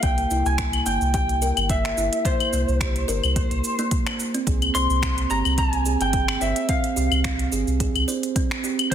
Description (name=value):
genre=organic downtempo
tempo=108 BPM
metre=4/4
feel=swing 55% on 16ths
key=unclear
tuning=A4 = 441 Hz
part: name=electric slide guitar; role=melody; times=0.0-8.9 s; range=C5 to C6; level=-26 LUFS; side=left 1 dB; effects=ping-pong delay
part: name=kalimba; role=arpeggios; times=0.0-8.9 s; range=Bb3 to C5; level=-27 LUFS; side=right 4 dB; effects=ping-pong delay
part: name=warm sub bass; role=bass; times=0.0-8.9 s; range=G1 to C2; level=-24 LUFS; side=equal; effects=sidechain pumping
part: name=electronic kick drum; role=drums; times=0.0-8.9 s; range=none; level=-26 LUFS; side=equal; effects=none
part: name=organic electronic drum kit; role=drums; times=0.0-8.9 s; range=claves, finger snaps, hi-hat, shaker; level=-27 LUFS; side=left 1 dB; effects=soft clipping on snare
room=moderate scoring stage reverb, RT60 1.6 s, digital ambience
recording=dense, heavily limited modern master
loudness=-20 LUFS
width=side -9 dB against mid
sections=0.0-8.9 A section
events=none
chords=0.0 C7(no3); 4.5 Fmadd9 (rootless)